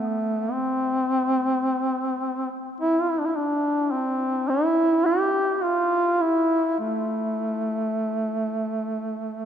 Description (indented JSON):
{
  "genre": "caucasian folk, Caucasian lament",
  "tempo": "52 BPM",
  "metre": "3/4",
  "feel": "rubato",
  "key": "A minor",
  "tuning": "A4 = 440 Hz",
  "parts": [
    { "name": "mellow duduk", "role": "solo", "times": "0.0-9.5 s", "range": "A3 to G4", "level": "-22 LUFS", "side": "equal", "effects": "none" }
  ],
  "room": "moderate cathedral reverb, RT60 4.7 s",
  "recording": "minimal, uncompressed stereo recording",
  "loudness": "-22 LUFS",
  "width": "side -9 dB against mid",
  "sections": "0.0-9.5 A section",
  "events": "none",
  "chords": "none"
}